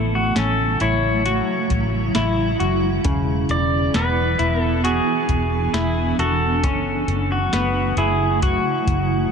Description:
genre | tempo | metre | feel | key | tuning
dream pop | 67 BPM | 4/4 | straight | A major | A4 = 441 Hz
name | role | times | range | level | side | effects
pedal steel guitar | melody | 0.0-9.3 s | F#4 to D5 | -23 LUFS | left 1 dB | ping-pong delay
granular cloud pad | sustained chords | 0.0-9.3 s | C#3 to E4 | -24 LUFS | right 2 dB | built-in reverb
semi-hollow electric guitar | arpeggios | 0.0-9.3 s | C#3 to F#4 | -25 LUFS | left 3 dB | analog chorus, ping-pong delay
vintage muted fingered electric bass | bass | 0.0-9.3 s | E1 to A1 | -23 LUFS | equal | none
soft vintage rhythm box | drums | 0.4-9.1 s | hi-hat, kick drum, snare drum | -24 LUFS | equal | none
room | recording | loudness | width
light reverb | none | -17 LUFS | side -6 dB against mid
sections
0.0-9.3 A section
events
none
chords
0.0 A6; 3.0 E7; 6.6 F#m7

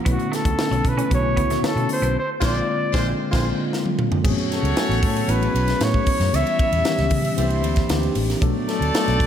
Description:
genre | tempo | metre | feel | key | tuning
polished 1980s jazz-funk pop | 115 BPM | 4/4 | straight | A major | A4 = 440 Hz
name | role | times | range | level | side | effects
mellow tine electric piano | accompaniment | 0.0-9.3 s | D3 to G#5 | -24 LUFS | left 2 dB | medium stereo tremolo, wide subtle chorus, slapback echo
clean electric guitar | riff | 0.0-2.1 s | F#3 to C#4 | -32 LUFS | right 4 dB | analog chorus, slapback echo
warm flugelhorn | melody | 0.1-9.3 s | F#4 to E5 | -25 LUFS | left 1 dB | slapback echo, digital delay
vintage muted fingered electric bass | bass | 0.1-9.3 s | A1 to C#3 | -23 LUFS | equal | none
crisp fusion drum kit | drums | 0.1-9.3 s | crash cymbal, hi-hat, kick drum, ride cymbal, snare drum, toms | -24 LUFS | equal | none
warm horn section | second line | 2.4-9.3 s | G3 to D5 | -29 LUFS | right 1 dB | slapback echo
room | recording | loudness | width
moderate scoring stage reverb, RT60 1.9 s, small room ambience | big arena sound | -18 LUFS | side -9 dB against mid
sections
0.0-4.2 A section; 4.2-9.3 B section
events
band accent 2.2-4.2; drum fill 3.7-4.2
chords
0.1 Bm11; 2.2 Bb9; 4.2 Amaj13; 6.3 C#m7b5; 7.4 C9; 8.4 Bm7

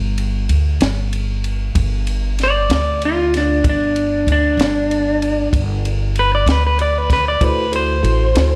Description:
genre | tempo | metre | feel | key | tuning
slow blues | 64 BPM (dotted quarters) | 12/8 | straight | unclear | A4 = 439 Hz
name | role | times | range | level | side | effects
upright bass | bass | 0.0-8.6 s | G1 to D2 | -21 LUFS | equal | none
compact cocktail drum kit | drums | 0.2-8.5 s | kick drum, ride cymbal, snare drum | -25 LUFS | equal | none
electric guitar through a small old amp | melody | 2.4-8.6 s | D4 to D5 | -19 LUFS | equal | spring reverb, plate reverb
tine electric piano | accompaniment | 7.4-8.6 s | E4 to C5 | -24 LUFS | equal | plate reverb
room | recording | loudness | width
light reverb | none | -17 LUFS | mono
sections
0.0-8.6 A section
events
clean electric guitar solo 0.0-8.6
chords
0.0 G5; 7.4 D9

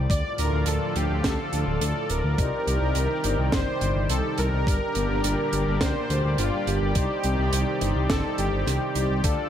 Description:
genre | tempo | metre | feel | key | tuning
synthwave | 105 BPM | 4/4 | straight | C dorian | A4 = 441 Hz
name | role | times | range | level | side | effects
lush unison pad | sustained chords | 0.0-9.5 s | A2 to D5 | -31 LUFS | equal | chorus, sidechain pumping
dark detuned saw bass | bass | 0.0-9.4 s | D1 to D2 | -25 LUFS | equal | none
soft supersaw | melody | 0.1-9.5 s | F4 to D5 | -29 LUFS | equal | tape echo
electronic kick drum | drums | 0.1-9.4 s | none | -26 LUFS | equal | none
tight funk drum kit | drums | 0.1-9.4 s | hi-hat, snare drum | -30 LUFS | right 2 dB | none
analog synth brass | stabs | 2.4-9.5 s | D4 to D5 | -31 LUFS | left 3 dB | chorus, vintage 12-bit sampler grit
room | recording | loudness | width
light reverb, small room ambience | none | -22 LUFS | side -10 dB against mid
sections
0.0-9.5 A section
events
none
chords
0.1 Dm; 2.4 Cmadd9; 4.7 Gm; 7.0 Cmadd9

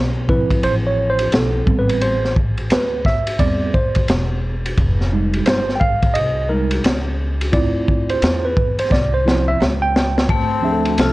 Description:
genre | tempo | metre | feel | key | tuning
hip hop, jazz-hop | 87 BPM | 4/4 | swing 63% on 16ths | D dorian | A4 = 440 Hz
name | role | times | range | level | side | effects
upright bass | bass | 0.0-11.1 s | E1 to E2 | -22 LUFS | equal | none
tine electric piano | accompaniment | 0.3-11.1 s | F3 to G5 | -19 LUFS | right 2 dB | medium stereo tremolo
crunchy breakbeat drum kit | drums | 0.3-11.1 s | hi-hat, kick drum, ride cymbal, snare drum | -19 LUFS | equal | none
vibraphone with medium hard mallets | melody | 10.3-11.1 s | A3 to F4 | -20 LUFS | left 5 dB | slapback echo
breathy jazz flute | second line | 10.3-11.1 s | C4 to A4 | -25 LUFS | left 2 dB | none
room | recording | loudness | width
small room ambience | worn, warbling old tape, cassette tape, warbly pitch drift | -15 LUFS | side -19 dB against mid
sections
0.0-10.3 A section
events
tine electric piano solo 0.0-10.3; drum fill 8.9-10.3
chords
0.0 Dm9 (rootless); 1.7 Am9; 4.8 Fm9; 7.5 Dm9

